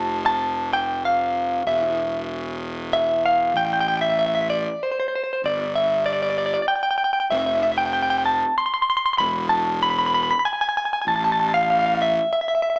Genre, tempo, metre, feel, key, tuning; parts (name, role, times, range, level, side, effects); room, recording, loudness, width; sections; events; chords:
post-rock; 96 BPM; 3/4; straight; A minor; A4 = 441 Hz
direct-recorded clean electric guitar; melody; 0.0-12.8 s; C5 to C6; -19 LUFS; equal
fuzz fingered electric bass; bass; 0.0-12.2 s; E1 to A1; -28 LUFS; equal; overdrive
wet large studio reverb, RT60 1.0 s; band playing live in one room, small speaker sound; -19 LUFS; side -33 dB against mid
0.0-3.5 A section; 3.5-12.8 B section
0.0 F; 1.7 N.C.; 3.5 Am; 5.4 G5; 7.3 F5; 9.2 E; 11.1 A5